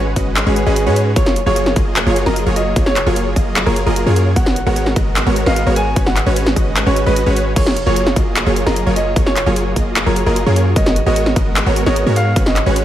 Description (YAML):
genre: future bass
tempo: 150 BPM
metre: 4/4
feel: half-time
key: F# major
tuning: A4 = 440 Hz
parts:
  - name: supersaw stab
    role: riff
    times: 0.0-12.8 s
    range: F#3 to D#5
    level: -18 LUFS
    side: right 1 dB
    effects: sidechain pumping
  - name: warm 808-style bass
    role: bass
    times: 0.0-12.8 s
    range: F#1 to G#2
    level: -18 LUFS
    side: equal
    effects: sidechain pumping
  - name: big-room dance drum kit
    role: drums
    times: 0.2-12.8 s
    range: crash cymbal, handclaps, hi-hat, snare drum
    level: -19 LUFS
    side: equal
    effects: overdrive, studio reverb
  - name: electronic kick drum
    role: drums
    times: 0.2-12.4 s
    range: none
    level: -17 LUFS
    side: equal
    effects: overdrive, studio reverb
  - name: bright grand piano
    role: melody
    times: 0.5-12.6 s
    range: G#4 to G#5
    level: -22 LUFS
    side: equal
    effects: sidechain pumping, digital delay
room: light reverb, digital ambience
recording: none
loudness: -13 LUFS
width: side -12 dB against mid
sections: 0.0-12.8 A section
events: kick drops out 7.2-7.6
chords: 0.0 C#7sus4/G#; 1.2 F#maj9; 4.4 G#m11; 6.0 C#7sus4/G#; 7.6 F#maj9; 10.8 G#m11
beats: 0.36 0.76 | 1.16 1.56 1.96 2.36 | 2.76 3.16 3.56 3.96 | 4.36 4.76 5.16 5.56 | 5.96 6.36 6.76 7.16 | 7.56 7.96 8.36 8.76 | 9.16 9.56 9.96 10.36 | 10.76 11.16 11.56 11.96 | 12.36 12.76